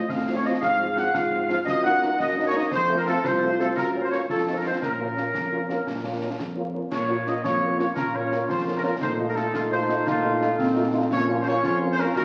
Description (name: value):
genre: military-style march for wind band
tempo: 114 BPM (dotted quarters)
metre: 6/8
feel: straight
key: Bb minor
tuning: A4 = 439 Hz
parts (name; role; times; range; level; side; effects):
- warm trumpet section; melody; 0.0-12.2 s; F4 to Gb5; -28 LUFS; equal; none
- dark woodwind section; second line; 0.0-12.2 s; Bb3 to Gb5; -32 LUFS; equal; none
- mellow euphonium; second line; 0.0-6.7 s; Bb3 to Ab4; -33 LUFS; equal; none
- warm tuba; bass; 0.1-12.2 s; C2 to Bb2; -33 LUFS; equal; none
- concert snare drum, concert bass drum and clash cymbals; drums; 0.1-12.2 s; none; -37 LUFS; equal; none
- dark French horn section; accompaniment; 0.3-12.1 s; F3 to F4; -32 LUFS; equal; none
- mellow trombone section; sustained chords; 6.9-12.2 s; F3 to F4; -33 LUFS; equal; none
room: wet recital hall reverb, RT60 1.4 s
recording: very old 78 rpm record, vinyl crackle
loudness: -24 LUFS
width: mono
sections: 0.0-6.9 A section; 6.9-12.2 A section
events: none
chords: 0.0 F/A; 0.6 Fm/Ab; 1.7 Ebm/Gb; 2.7 F; 3.8 Gb; 4.3 F7; 4.8 Bbm; 9.0 F7/Bb; 11.1 Bbm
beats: 0.09 | 0.61 1.14 | 1.67 2.19 | 2.72 3.24 | 3.77 4.29 | 4.82 5.34 | 5.87 6.39 | 6.92 7.44 | 7.96 8.49 | 9.01 9.54 | 10.06 10.59 | 11.11 11.63 | 12.16